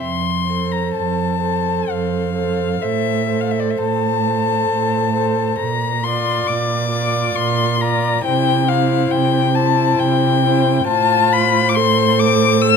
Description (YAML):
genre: classical, slow romantic movement for string quartet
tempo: 66 BPM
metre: 3/4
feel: uneven beats, rubato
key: F major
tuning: A4 = 444 Hz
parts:
  - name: muted violin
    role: melody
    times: 0.0-12.8 s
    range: D5 to E6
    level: -19 LUFS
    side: left 9 dB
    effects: none
  - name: muted cello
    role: bass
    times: 0.0-12.8 s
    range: F2 to C3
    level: -20 LUFS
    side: right 6 dB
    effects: none
  - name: muted violin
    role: second line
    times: 0.5-12.8 s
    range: C5 to D5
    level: -24 LUFS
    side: left 4 dB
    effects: none
  - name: muted viola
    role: accompaniment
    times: 0.5-12.8 s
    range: E4 to A4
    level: -23 LUFS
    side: right 4 dB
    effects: none
room: light reverb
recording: close, detailed microphones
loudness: -15 LUFS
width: side -6 dB against mid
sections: 0.0-12.8 A section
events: none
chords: 0.0 F; 2.8 Am; 5.6 Bb; 8.2 C; 10.9 F/A